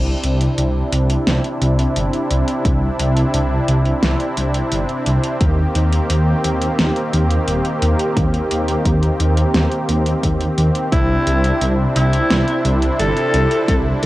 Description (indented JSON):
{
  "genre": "synthwave",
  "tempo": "87 BPM",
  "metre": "4/4",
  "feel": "straight",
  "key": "unclear",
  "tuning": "A4 = 440 Hz",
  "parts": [
    { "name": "soft supersaw", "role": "sustained chords", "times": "0.0-14.1 s", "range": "C3 to G4", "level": "-20 LUFS", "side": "equal", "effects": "sidechain pumping, cassette tape, shimmer reverb" },
    { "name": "dark detuned saw bass", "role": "bass", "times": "0.0-14.1 s", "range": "Eb1 to Eb2", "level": "-17 LUFS", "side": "equal", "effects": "none" },
    { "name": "pop drum kit", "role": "drums", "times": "0.2-14.1 s", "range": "hi-hat, snare drum", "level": "-23 LUFS", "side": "equal", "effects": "overdrive, cassette tape" },
    { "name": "electronic kick drum", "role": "drums", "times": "2.6-13.8 s", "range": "none", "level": "-19 LUFS", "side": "equal", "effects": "overdrive, cassette tape" },
    { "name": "growling alto saxophone", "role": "melody", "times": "10.9-14.1 s", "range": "E4 to A4", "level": "-19 LUFS", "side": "equal", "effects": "cassette tape, shimmer reverb" }
  ],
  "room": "moderate small room reverb, RT60 0.6 s",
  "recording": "home recording on cassette",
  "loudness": "-15 LUFS",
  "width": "side -17 dB against mid",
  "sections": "0.0-14.1 A section",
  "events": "none",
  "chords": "0.0 Cadd9; 5.4 Eb6; 10.9 Cadd9",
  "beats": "0.58 1.27 1.96 | 2.65 3.34 4.03 4.72 | 5.41 6.10 6.79 7.48 | 8.17 8.86 9.55 10.23 | 10.93 11.62 12.30 12.99 | 13.68"
}